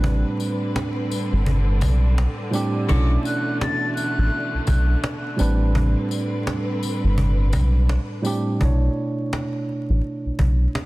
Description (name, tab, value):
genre	hip hop, boom-bap hip-hop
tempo	84 BPM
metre	4/4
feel	swing 59% on 16ths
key	B phrygian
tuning	A4 = 440 Hz
part	tine electric piano	accompaniment	0.0-10.9 s	A2 to C#5	-25 LUFS	right 2 dB	cassette tape, high-pass filter, low-pass filter
part	rich studio string section	sustained chords	0.0-8.6 s	B2 to B4	-32 LUFS	left 2 dB	high-pass filter, low-pass filter
part	round analog bass	bass	0.0-10.7 s	G1 to B1	-18 LUFS	equal	none
part	cajon	drums	0.0-10.9 s	none	-27 LUFS	equal	none
part	tambourine	percussion	0.4-8.4 s	none	-39 LUFS	left 9 dB	none
part	breathy concert flute	melody	2.9-5.0 s	D6 to A6	-29 LUFS	left 2 dB	high-pass filter, low-pass filter, digital delay
part	bright saxophone section	stabs	2.9-3.1 s	E4 to A4	-34 LUFS	left 2 dB	high-pass filter, low-pass filter, digital delay
room	little or no reverb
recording	dense, heavily limited modern master, vinyl crackle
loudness	-19 LUFS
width	side -20 dB against mid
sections	0.0-8.6 A section; 8.6-10.9 B section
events	none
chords	0.0 Am11; 2.9 Bm11; 5.4 Am11; 8.6 Bm11